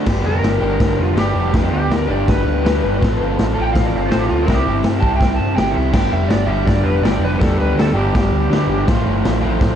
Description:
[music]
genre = garage rock duo or trio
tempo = 164 BPM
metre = 4/4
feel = straight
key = G mixolydian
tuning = A4 = 440 Hz
[part]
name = crunchy overdriven guitar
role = riff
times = 0.0-9.8 s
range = G2 to A4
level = -20 LUFS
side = equal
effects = none
[part]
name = overdriven picked electric bass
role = bass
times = 0.1-9.8 s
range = F1 to G2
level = -20 LUFS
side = equal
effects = none
[part]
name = raw garage drum kit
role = drums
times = 0.1-9.7 s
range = crash cymbal, hi-hat, kick drum, snare drum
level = -19 LUFS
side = equal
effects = vintage 12-bit sampler grit
[part]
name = overdriven slide guitar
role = melody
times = 0.3-8.8 s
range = F4 to A5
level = -22 LUFS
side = left 1 dB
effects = none
[sound]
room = light reverb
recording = none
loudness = -14 LUFS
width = side -9 dB against mid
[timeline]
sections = 0.1-9.8 A section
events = electric slide guitar solo 0.1-9.8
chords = 0.1 G; 3.0 F; 4.5 C; 5.9 G; 8.9 F

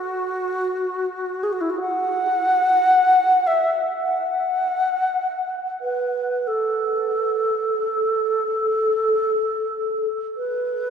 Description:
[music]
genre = classical, free, expressive piece for unaccompanied alto flute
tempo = 36-57 BPM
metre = 4/4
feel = rubato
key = unclear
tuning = A4 = 439 Hz
[part]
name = alto flute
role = solo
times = 0.0-10.9 s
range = E4 to F#5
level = -19 LUFS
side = equal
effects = none
[sound]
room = wet cathedral reverb, RT60 5.0 s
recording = recorded in a church or concert hall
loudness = -19 LUFS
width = side -7 dB against mid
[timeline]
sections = 0.0-10.9 A section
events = none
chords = none

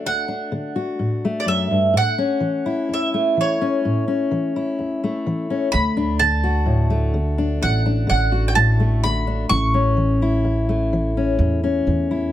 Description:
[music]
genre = folk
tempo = 64 BPM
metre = 4/4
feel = straight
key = D major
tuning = A4 = 440 Hz
[part]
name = mandolin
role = melody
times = 0.0-12.3 s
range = C#5 to C#6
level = -22 LUFS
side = right 3 dB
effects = plate reverb
[part]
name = fingerpicked steel-string acoustic guitar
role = accompaniment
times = 0.0-12.3 s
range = D2 to F#4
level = -21 LUFS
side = left 2 dB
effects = none
[part]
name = upright bass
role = bass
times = 5.7-12.3 s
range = A1 to E2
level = -20 LUFS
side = right 1 dB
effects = none
[sound]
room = light reverb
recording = close, detailed microphones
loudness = -18 LUFS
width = side -12 dB against mid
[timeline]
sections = 0.0-12.3 A section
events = none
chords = 0.0 D; 2.0 A; 5.7 D; 9.5 A

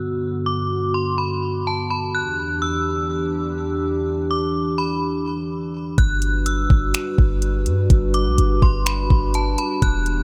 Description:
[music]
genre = hip hop, atmospheric cloud-rap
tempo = 125 BPM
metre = 4/4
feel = half-time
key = G major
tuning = A4 = 440 Hz
[part]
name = dark analog pad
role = sustained chords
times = 0.0-10.2 s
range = E2 to B4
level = -26 LUFS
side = equal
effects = lush chorus, sidechain pumping, low-pass filter
[part]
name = metallic FM bell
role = melody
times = 0.5-10.2 s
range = A5 to F#6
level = -28 LUFS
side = equal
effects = chorus, low-pass filter, digital delay
[part]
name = clean 808-style bass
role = bass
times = 6.0-10.2 s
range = E1 to G2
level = -22 LUFS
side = equal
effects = none
[part]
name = smooth R&B drum kit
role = drums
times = 6.0-10.2 s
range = finger snaps, hi-hat, kick drum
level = -20 LUFS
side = equal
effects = none
[sound]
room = little or no reverb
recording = none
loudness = -21 LUFS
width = mono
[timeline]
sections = 0.0-6.0 A section; 6.0-10.2 B section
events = none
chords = 0.0 Gmaj7; 2.1 Em7; 6.0 Gmaj7

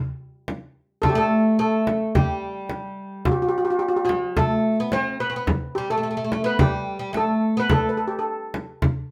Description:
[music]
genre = Arabic maqam ensemble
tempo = 108 BPM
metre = 4/4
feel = straight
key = unclear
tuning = A4 = 440 Hz
[part]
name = frame drum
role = percussion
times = 0.5-8.9 s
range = none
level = -25 LUFS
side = equal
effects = none
[part]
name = steel pan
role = melody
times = 1.0-8.3 s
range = F#4-50c to C5+50c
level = -26 LUFS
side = equal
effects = none
[part]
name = oud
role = second line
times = 1.0-7.9 s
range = F#3-50c to C4+50c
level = -26 LUFS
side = equal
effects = none
[sound]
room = moderate studio reverb, RT60 0.6 s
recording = none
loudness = -23 LUFS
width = mono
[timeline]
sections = 0.0-9.1 A section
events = none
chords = none

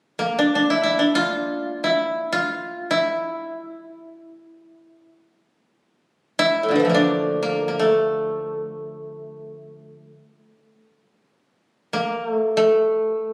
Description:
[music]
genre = japanese traditional, Japanese chamber music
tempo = free time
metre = none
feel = none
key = D hirajoshi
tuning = A4 = 440 Hz
[part]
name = koto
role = solo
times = 0.2-13.3 s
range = A2 to F4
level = -22 LUFS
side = equal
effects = none
[sound]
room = light reverb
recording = recorded on a phone in the room, studio reverb, compression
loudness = -21 LUFS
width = mono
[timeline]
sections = 0.0-13.3 A section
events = none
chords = none

